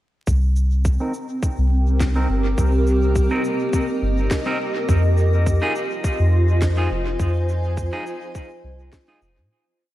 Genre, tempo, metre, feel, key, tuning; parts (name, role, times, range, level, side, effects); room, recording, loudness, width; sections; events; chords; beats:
ambient dub; 104 BPM; 4/4; swing 54% on 16ths; C minor; A4 = 437 Hz
granular cloud pad; sustained chords; 1.0-9.5 s; C4 to Ab5; -24 LUFS; equal; built-in reverb
soft dub sub bass; bass; 0.3-9.5 s; F1 to Bb2; -18 LUFS; equal
electronic kick drum; drums; 0.3-9.1 s; -23 LUFS; equal
electronic shaker and snare drum; drums; 0.3-9.3 s; -33 LUFS; left 1 dB; dub echo
electric guitar at the edge of break-up; stabs; 1.0-9.2 s; C4 to Bb4; -29 LUFS; equal; vintage 12-bit sampler grit, low-pass filter, dub echo
moderate lush hall reverb, RT60 1.9 s; dreamy mix soaked in reverb, vinyl crackle; -18 LUFS; side -15 dB against mid
0.3-9.5 groove
filter sweep on clean electric guitar 0.3-9.5; fade-out 6.4-9.5
0.3 Cm7; 4.9 Fm7
| 0.27 0.85 1.43 2.00 | 2.58 3.16 3.73 4.31 | 4.89 5.46 6.04 6.62 | 7.19 7.77 8.35 8.93